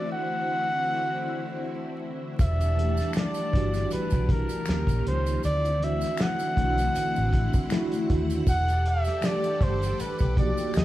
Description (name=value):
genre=R&B, neo-soul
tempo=79 BPM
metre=4/4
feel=swing 54% on 16ths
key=E minor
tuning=A4 = 440 Hz
part: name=warm flugelhorn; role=melody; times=0.0-10.8 s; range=A#4 to F#5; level=-29 LUFS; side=right 1 dB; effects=none
part: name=mellow tine electric piano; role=accompaniment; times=0.0-10.8 s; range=E3 to G4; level=-31 LUFS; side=equal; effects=medium stereo tremolo
part: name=string machine, violins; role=sustained chords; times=0.0-10.8 s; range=D3 to A5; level=-34 LUFS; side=equal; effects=ensemble chorus
part: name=vintage muted fingered electric bass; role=bass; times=2.4-10.8 s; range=E1 to D#2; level=-27 LUFS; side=equal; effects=none
part: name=cloth-damped thuddy drum kit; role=drums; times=2.4-10.8 s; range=hi-hat, kick drum, snare drum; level=-27 LUFS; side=equal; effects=none
part: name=maracas and finger snaps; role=percussion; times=2.4-10.8 s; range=none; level=-42 LUFS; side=equal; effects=none
room=moderate large studio reverb, RT60 1.1 s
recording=band playing live in one room, vinyl crackle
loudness=-23 LUFS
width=side -15 dB against mid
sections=0.0-10.8 A section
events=none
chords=0.0 D9; 2.4 Em11; 4.7 D#9; 5.4 D9; 8.5 Em11